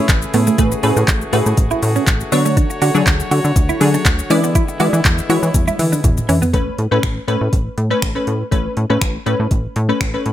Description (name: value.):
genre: dance-pop.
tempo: 121 BPM.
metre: 4/4.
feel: straight.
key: A major.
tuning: A4 = 442 Hz.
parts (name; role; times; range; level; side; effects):
wavetable chord stab; accompaniment; 0.0-10.3 s; F#3 to D5; -20 LUFS; left 2 dB; sidechain pumping.
clear brass ensemble; sustained chords; 0.0-6.5 s; C#3 to C#5; -25 LUFS; left 2 dB; sidechain pumping.
clean electric guitar; riff; 0.0-6.5 s; A3 to F#4; -20 LUFS; right 4 dB; analog chorus.
plucky analog bass; bass; 0.1-10.3 s; A1 to E3; -18 LUFS; equal; sidechain pumping.
smooth R&B drum kit; drums; 0.1-10.3 s; finger snaps, handclaps, hi-hat, kick drum, shaker, toms; -17 LUFS; equal; none.
room: little or no reverb.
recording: none.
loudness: -14 LUFS.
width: side -12 dB against mid.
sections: 0.0-6.5 A section; 6.5-10.3 B section.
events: drum fill 5.5-6.5.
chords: 0.0 Amaj7; 2.3 Dmaj7; 4.3 E7; 6.5 Aadd9.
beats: 0.09 | 0.59 1.08 1.58 2.07 | 2.57 3.07 3.56 4.06 | 4.55 5.05 5.54 6.04 | 6.54 7.03 7.53 8.02 | 8.52 9.02 9.51 10.01.